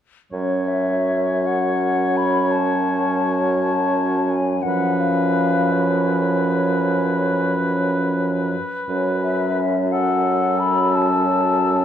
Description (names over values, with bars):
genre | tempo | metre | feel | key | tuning
classical, slow romantic movement for wind quintet | 53-60 BPM (dotted quarters) | 12/8 | rubato | F# minor | A4 = 439 Hz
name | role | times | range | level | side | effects
mellow hollow silver concert flute | melody | 0.3-11.8 s | C#5 to B5 | -23 LUFS | left 7 dB | none
warm oboe | second line | 0.3-11.8 s | A4 to C#5 | -25 LUFS | left 2 dB | none
bright clarinet | accompaniment | 0.3-11.8 s | C#4 | -24 LUFS | right 3 dB | none
clear French horn | accompaniment | 0.3-11.8 s | E#3 to F#3 | -25 LUFS | right 1 dB | none
mellow bassoon | bass | 0.3-11.8 s | F#2 | -24 LUFS | right 2 dB | none
room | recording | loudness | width
moderate recital hall reverb, RT60 1.3 s | dark, warm production | -17 LUFS | side -9 dB against mid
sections
0.3-11.8 A section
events
none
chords
0.3 F#m; 4.6 C#7/F#; 8.9 F#m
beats
| 0.32 1.44 2.52 3.59 | 4.65 5.74 6.80 7.85 | 8.88 9.91 10.94